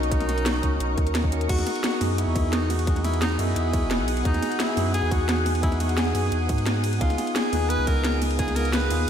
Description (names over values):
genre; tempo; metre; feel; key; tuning
liquid drum and bass; 174 BPM; 4/4; straight; unclear; A4 = 439 Hz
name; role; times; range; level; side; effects
breathy tenor saxophone; melody; 0.0-9.1 s; D#4 to B4; -30 LUFS; left 1 dB; ping-pong delay
tine electric piano; accompaniment; 0.0-9.1 s; B3 to D#5; -29 LUFS; equal; medium stereo tremolo, tape echo
shimmering ambient pad; sustained chords; 0.0-9.1 s; B3 to D#6; -31 LUFS; equal; chorus, built-in reverb, phaser, sidechain pumping
saturated sub bass; bass; 0.0-9.1 s; E1 to G#2; -25 LUFS; equal; none
drum and bass drum kit; drums; 0.0-9.0 s; crash cymbal, hi-hat, ride cymbal, snare drum; -29 LUFS; equal; overdrive
electronic kick drum; drums; 0.1-8.5 s; none; -25 LUFS; equal; overdrive
room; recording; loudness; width
moderate lush hall reverb, RT60 1.9 s; dreamy mix soaked in reverb; -21 LUFS; side -8 dB against mid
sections
0.0-9.1 A section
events
none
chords
0.0 Bmaj9; 1.5 Emaj9; 7.0 C#9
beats
| 0.12 0.46 0.80 1.15 | 1.49 1.84 2.18 2.53 | 2.87 3.22 3.56 3.91 | 4.25 4.60 4.94 5.29 | 5.63 5.98 6.32 6.67 | 7.01 7.36 7.70 8.05 | 8.39 8.73 9.08